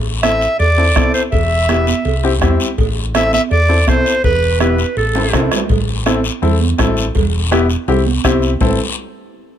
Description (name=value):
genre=latin, cumbia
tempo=165 BPM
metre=4/4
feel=straight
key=A minor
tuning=A4 = 439 Hz
part: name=hollow-body short-scale fingered electric bass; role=bass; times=0.0-8.8 s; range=E1 to E2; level=-17 LUFS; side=equal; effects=none
part: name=bright clarinet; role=melody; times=0.2-5.5 s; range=A4 to E5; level=-16 LUFS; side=right 1 dB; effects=none
part: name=clear upright piano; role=accompaniment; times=0.2-8.8 s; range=B3 to A4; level=-19 LUFS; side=left 4 dB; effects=none
part: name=bombo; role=percussion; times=0.2-8.7 s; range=none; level=-19 LUFS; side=left 1 dB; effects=none
part: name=congas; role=percussion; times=0.2-8.7 s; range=none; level=-22 LUFS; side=right 10 dB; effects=none
part: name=cowbell and timbales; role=percussion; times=0.2-8.7 s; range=none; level=-26 LUFS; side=right 7 dB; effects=none
part: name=guiro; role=percussion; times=0.2-8.7 s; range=none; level=-26 LUFS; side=left 7 dB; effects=none
room=little or no reverb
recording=close, detailed microphones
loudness=-12 LUFS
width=side -10 dB against mid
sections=0.0-5.7 A section; 5.7-8.6 B section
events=drum fill 4.6-5.7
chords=0.0 Am; 1.3 Em; 2.1 C; 2.8 Am; 4.2 Em; 5.0 Am; 7.2 Em; 7.9 C; 8.6 Am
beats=0.23 0.60 0.96 | 1.33 1.69 2.06 2.42 | 2.78 3.15 3.51 3.88 | 4.24 4.61 4.97 5.33 | 5.70 6.06 6.43 6.79 | 7.15 7.52 7.88 8.24 | 8.61